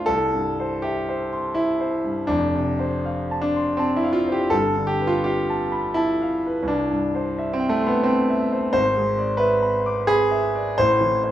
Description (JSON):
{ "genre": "classical, romantic character piece for solo piano", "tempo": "76-91 BPM", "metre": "3/4", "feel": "rubato", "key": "C major", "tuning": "A4 = 439 Hz", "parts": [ { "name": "clear concert grand piano", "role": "solo", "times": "0.0-11.3 s", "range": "F1 to D6", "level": "-19 LUFS", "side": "equal", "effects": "none" } ], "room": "moderate large studio reverb, RT60 0.8 s", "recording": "heard from further back in the room", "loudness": "-19 LUFS", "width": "side -12 dB against mid", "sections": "0.1-11.3 A section", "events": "none", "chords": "0.1 C; 2.3 F; 4.5 G9; 6.7 C; 8.7 E7/G#; 10.8 Am", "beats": "| 0.08 0.84 1.57 | 2.31 3.06 3.80 | 4.52 5.25 5.97 | 6.68 7.36 8.05 | 8.73 9.40 10.10 | 10.78" }